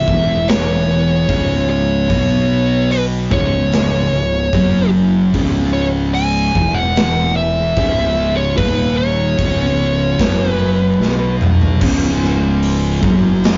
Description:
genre	stoner and doom metal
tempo	74 BPM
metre	4/4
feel	straight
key	C# minor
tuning	A4 = 440 Hz
part	fuzz lead guitar	melody	0.0-11.4 s	B4 to G#5	-21 LUFS	equal	distortion
part	thick fuzz guitar	riff	0.0-13.6 s	C#2 to B3	-26 LUFS	equal	distortion
part	thick fuzz guitar	riff	0.0-13.6 s	C#2 to B3	-21 LUFS	equal	distortion
part	fuzz fingered electric bass	bass	0.0-13.6 s	C#1 to B1	-22 LUFS	equal	overdrive
part	big rock drum kit	drums	0.1-13.6 s	crash cymbal, hi-hat, kick drum, snare drum, toms	-22 LUFS	equal	none
room	light reverb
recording	rough rehearsal-room recording, warm saturation, nothing above 7.5 kHz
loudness	-15 LUFS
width	mono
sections	0.0-11.8 A section; 11.8-13.6 B section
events	drum fill 11.0-11.8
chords	0.0 C#m; 11.8 C#5

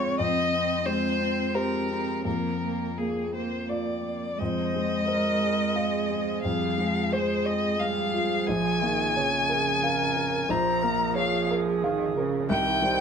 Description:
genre	neoclassical piano and strings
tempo	88 BPM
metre	3/4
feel	rubato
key	F minor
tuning	A4 = 440 Hz
part	muted violin	melody	0.0-13.0 s	Ab4 to Bb5	-27 LUFS	left 3 dB	none
part	muted cello	second line	0.0-13.0 s	Db3 to C4	-31 LUFS	right 9 dB	none
part	dark grand piano	accompaniment	0.0-13.0 s	Bb1 to F5	-29 LUFS	left 2 dB	none
part	muted viola	accompaniment	4.4-13.0 s	G4 to C5	-32 LUFS	right 4 dB	none
room	moderate studio reverb, RT60 0.6 s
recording	none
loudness	-24 LUFS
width	side -6 dB against mid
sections	0.0-4.4 A section; 4.4-13.0 B section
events	none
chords	0.2 Abmaj7/F; 2.3 Bb/F; 4.4 Fm; 8.5 Bbm; 12.5 Cm

